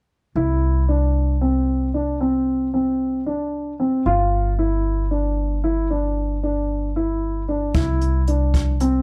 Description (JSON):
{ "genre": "progressive instrumental, band music in an uneven meter", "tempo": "114 BPM", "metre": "7/4", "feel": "straight", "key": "C major", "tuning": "A4 = 440 Hz", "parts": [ { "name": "dark concert grand piano", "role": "arpeggios", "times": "0.4-9.0 s", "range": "C4 to F4", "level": "-24 LUFS", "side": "equal", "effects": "none" }, { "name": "upright bass", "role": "bass", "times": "0.4-9.0 s", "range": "G1 to C2", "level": "-24 LUFS", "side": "equal", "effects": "none" }, { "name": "jazz brush drum kit", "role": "drums", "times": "7.7-8.9 s", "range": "hi-hat, kick drum", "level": "-25 LUFS", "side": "equal", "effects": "none" } ], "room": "light reverb", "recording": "dark, warm production", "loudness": "-21 LUFS", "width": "mono", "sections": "0.4-9.0 A section", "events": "none", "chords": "0.4 C; 4.1 G5; 7.7 C" }